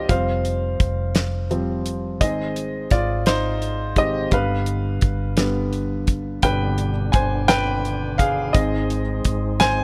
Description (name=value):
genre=six-eight pop ballad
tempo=57 BPM (dotted quarters)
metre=6/8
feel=straight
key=unclear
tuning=A4 = 440 Hz
part: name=warm upright piano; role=accompaniment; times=0.0-9.8 s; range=D3 to Ab5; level=-25 LUFS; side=equal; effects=none
part: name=vintage muted fingered electric bass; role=bass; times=0.0-9.8 s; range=F1 to Ab1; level=-28 LUFS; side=equal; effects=none
part: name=damped 70s drum kit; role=drums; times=0.1-9.8 s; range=hi-hat, kick drum, snare drum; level=-22 LUFS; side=equal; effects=none
part: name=tonewheel organ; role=sustained chords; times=6.4-9.8 s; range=B2 to Eb4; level=-31 LUFS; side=equal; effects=chorus vibrato, stopped rotary speaker
room=studio ambience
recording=none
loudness=-22 LUFS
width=mono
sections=0.0-9.8 A section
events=upright piano solo 0.0-9.8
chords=0.1 Fsus2; 2.2 Ab; 4.3 G; 8.6 Ab